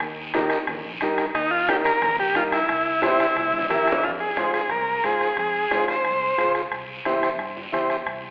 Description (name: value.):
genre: latin, cumbia.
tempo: 179 BPM.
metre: 4/4.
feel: straight.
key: F harmonic minor from 4.0 s.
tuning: A4 = 440 Hz.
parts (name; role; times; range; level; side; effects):
fingered electric bass; bass; 0.0-8.3 s; Bb1 to Ab2; -44 LUFS; equal; none.
bombo; percussion; 0.0-8.2 s; none; -33 LUFS; equal; none.
congas; percussion; 0.0-8.2 s; none; -36 LUFS; equal; none.
guiro; percussion; 0.0-8.3 s; none; -38 LUFS; equal; none.
overdriven combo organ; accompaniment; 0.3-8.0 s; Eb4 to C5; -28 LUFS; equal; none.
overdriven combo organ; melody; 1.3-6.5 s; Eb4 to C5; -24 LUFS; equal; none.
room: wet recital hall reverb, RT60 1.7 s.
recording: recorded in a church or concert hall, telephone sound.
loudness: -23 LUFS.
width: mono.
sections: 0.0-4.0 A section; 4.0-8.3 B section.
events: drum fill 3.4-4.0.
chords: 0.0 Eb; 2.7 C7; 4.0 Fm; 6.7 C.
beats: | 0.01 0.35 0.68 1.02 | 1.35 1.69 2.02 2.36 | 2.70 3.03 3.37 3.70 | 4.04 4.37 4.71 5.04 | 5.38 5.72 6.05 6.39 | 6.72 7.06 7.40 7.73 | 8.07.